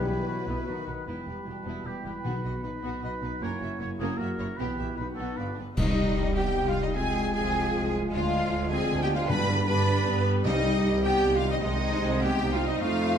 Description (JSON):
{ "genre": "cinematic, heroic adventure film score", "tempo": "154 BPM", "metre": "3/4", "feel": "straight", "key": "E harmonic minor, C harmonic minor from 5.8 s", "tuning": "A4 = 441 Hz", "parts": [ { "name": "rich symphonic violin section", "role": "melody", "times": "0.0-13.2 s", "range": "E4 to B5", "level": "-36 LUFS", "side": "left 3 dB", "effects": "none" }, { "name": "clear symphonic violin section", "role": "second line", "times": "0.0-13.2 s", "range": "B3 to B5", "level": "-40 LUFS", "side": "left 3 dB", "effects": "none" }, { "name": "mellow small flute group", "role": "second line", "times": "0.0-13.2 s", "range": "D#5 to B5", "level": "-39 LUFS", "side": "right 4 dB", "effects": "none" }, { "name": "warm clarinet", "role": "second line", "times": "0.0-13.2 s", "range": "G3 to G4", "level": "-36 LUFS", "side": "left 2 dB", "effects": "none" }, { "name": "warm oboe", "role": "second line", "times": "0.0-5.6 s", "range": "G4 to C#5", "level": "-37 LUFS", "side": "equal", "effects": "none" }, { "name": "rich symphonic viola section", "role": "accompaniment", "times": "0.0-13.2 s", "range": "C3 to Eb4", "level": "-35 LUFS", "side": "right 2 dB", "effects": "none" }, { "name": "mellow French horn section", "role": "sustained chords", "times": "0.0-13.2 s", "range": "C3 to C5", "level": "-35 LUFS", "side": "left 5 dB", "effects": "none" }, { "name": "mellow trombone section", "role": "sustained chords", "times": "0.0-13.2 s", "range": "B2 to A3", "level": "-35 LUFS", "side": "right 2 dB", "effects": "none" }, { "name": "warm trumpet section", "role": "stabs", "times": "0.0-13.2 s", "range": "D#4 to B5", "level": "-38 LUFS", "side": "right 1 dB", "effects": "none" }, { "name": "timpani", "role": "percussion", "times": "0.0-2.8, 5.8-6.3, 9.3-11.0 s", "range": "G2 to C3", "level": "-32 LUFS", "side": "left 1 dB", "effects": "none" }, { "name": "rich symphonic cello section", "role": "bass", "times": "0.1-13.2 s", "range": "E2 to B4", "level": "-33 LUFS", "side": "right 1 dB", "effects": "none" }, { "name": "rich symphonic double bass section", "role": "bass", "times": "0.1-13.2 s", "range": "E1 to G2", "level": "-32 LUFS", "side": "right 2 dB", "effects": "none" }, { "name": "cymbal swell, clash cymbals and concert bass drum", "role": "percussion", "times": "3.4-6.5 s", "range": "none", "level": "-34 LUFS", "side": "left 1 dB", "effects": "none" } ], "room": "wet recital hall reverb, RT60 1.4 s", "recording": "dark, warm production", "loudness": "-25 LUFS", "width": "side -8 dB against mid", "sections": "0.0-1.1 A section; 1.1-5.8 B section; 5.8-13.2 C section", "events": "band accent 5.8-6.2", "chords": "0.0 Em/B; 0.7 B; 1.1 Em; 2.3 B; 3.4 F#7; 4.6 Em/B; 5.0 B; 5.4 G7; 5.8 Cm; 7.0 Fm/C; 8.1 Ddim; 9.3 G; 10.5 Cm; 11.6 Ab/C" }